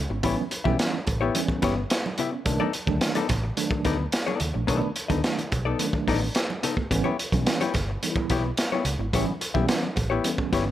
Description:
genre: funk.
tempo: 108 BPM.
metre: 4/4.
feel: straight.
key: unclear.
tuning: A4 = 440 Hz.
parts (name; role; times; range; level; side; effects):
vintage muted fingered electric bass; bass; 0.0-10.7 s; G1 to D#2; -28 LUFS; equal; none.
hollow-body jazz guitar; accompaniment; 0.1-10.7 s; B3 to E5; -29 LUFS; left 6 dB; none.
mellow tine electric piano; stabs; 0.1-10.7 s; D#3 to E4; -29 LUFS; right 3 dB; medium stereo tremolo.
crunchy breakbeat drum kit; drums; 0.2-10.7 s; hi-hat, kick drum, snare drum; -27 LUFS; right 1 dB; none.
congas; percussion; 0.2-10.5 s; none; -36 LUFS; right 6 dB; none.
room: small room ambience.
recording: none.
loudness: -23 LUFS.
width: side -12 dB against mid.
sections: 0.0-10.7 A section.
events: none.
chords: 0.0 A9; 2.5 B7#9; 6.9 A9 (rootless).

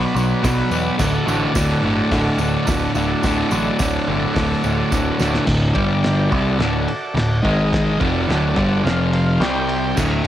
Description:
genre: garage rock duo or trio.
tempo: 107 BPM.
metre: 4/4.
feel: straight.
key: D mixolydian.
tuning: A4 = 440 Hz.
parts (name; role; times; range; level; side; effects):
overdriven combo organ; sustained chords; 0.0-10.0 s; D4 to G5; -25 LUFS; equal; wide subtle chorus, cassette tape.
fuzz guitar; riff; 0.0-10.2 s; D2 to C4; -18 LUFS; equal; distortion, cassette tape.
growling picked electric bass; bass; 0.0-10.2 s; D1 to E2; -24 LUFS; equal; overdrive, tube saturation.
tambourine; percussion; 0.2-5.3, 10.0-10.1 s; none; -35 LUFS; right 7 dB; none.
cloth-damped thuddy drum kit; drums; 0.4-10.3 s; crash cymbal, hi-hat, kick drum, ride cymbal, snare drum; -24 LUFS; equal; cassette tape.
room: light reverb, studio ambience.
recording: home recording on cassette.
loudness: -16 LUFS.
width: side -12 dB against mid.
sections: 0.0-5.5 A section; 5.5-10.3 B section.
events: drum fill 4.9-5.5.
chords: 0.0 Bm; 1.0 D; 5.5 D5; 5.8 G5; 6.3 D; 7.4 G#5; 8.0 D; 8.8 F5; 9.4 C5; 10.0 D5.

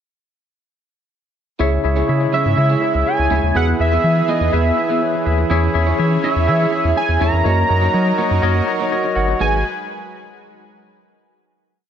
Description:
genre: pop.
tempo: 123 BPM.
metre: 4/4.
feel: straight.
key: G# minor.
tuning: A4 = 440 Hz.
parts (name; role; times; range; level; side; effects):
tine electric piano; accompaniment; 1.6-9.6 s; G#1 to F#5; -20 LUFS; left 2 dB; medium stereo tremolo.
lush unison pad; sustained chords; 1.6-9.6 s; C#3 to B4; -26 LUFS; equal; chorus.
electric guitar at the edge of break-up; riff; 1.6-9.6 s; G#3 to C#5; -26 LUFS; right 6 dB; lush chorus, ping-pong delay.
round analog bass; bass; 1.6-9.6 s; G1 to F#3; -18 LUFS; left 1 dB; none.
wide unison lead; melody; 2.3-9.6 s; D#5 to A#5; -20 LUFS; right 3 dB; ping-pong delay.
room: light reverb.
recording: none.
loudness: -14 LUFS.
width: side -9 dB against mid.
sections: 1.6-9.4 pre-chorus; 9.4-11.4 final chord.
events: none.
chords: 1.6 C#m; 3.5 E; 5.5 C#m/E; 7.5 F#6; 9.4 G#m7.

